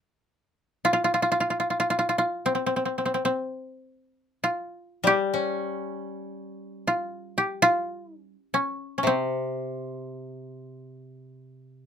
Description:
japanese traditional, Japanese chamber music; free time; A4 = 439 Hz
koto; melody; 0.8-11.7 s; C4 to G4; -23 LUFS; equal
koto; accompaniment; 5.0-11.9 s; C3 to Db4; -30 LUFS; left 3 dB
little or no reverb; close, detailed microphones; -24 LUFS; side -8 dB against mid
0.0-3.7 A section; 3.7-11.9 A section

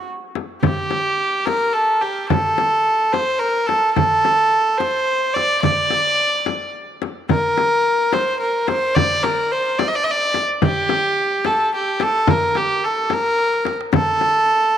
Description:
Arabic maqam ensemble; 72 BPM (dotted quarters); 6/8; straight; A4 = 440 Hz
warm violin; melody; 0.0-14.8 s; G4 to Eb5+30c; -17 LUFS; right 1 dB
frame drum; percussion; 0.4-14.3 s; -23 LUFS; left 8 dB
darbuka; percussion; 0.6-14.3 s; -26 LUFS; right 10 dB
moderate plate reverb, RT60 2.8 s; 1960s-style stereo with parts hard left and right; -16 LUFS; side -9 dB against mid
0.0-7.3 A section; 7.3-14.8 B section
drum fill 13.4-13.9

